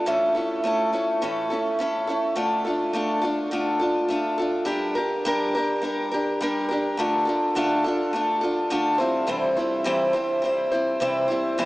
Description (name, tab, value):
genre	rock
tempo	104 BPM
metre	4/4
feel	straight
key	D minor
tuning	A4 = 445 Hz
part	picked acoustic archtop guitar	solo	0.0-11.7 s	A2 to C5	-21 LUFS	equal	tape echo
room	wet huge ambient reverb, RT60 6.9 s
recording	dreamy mix soaked in reverb, small speaker sound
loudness	-21 LUFS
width	side -19 dB against mid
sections	0.0-4.7 A section; 4.7-11.7 B section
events	none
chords	0.1 A; 2.4 Dm; 4.7 Gm; 7.0 Dm; 9.0 C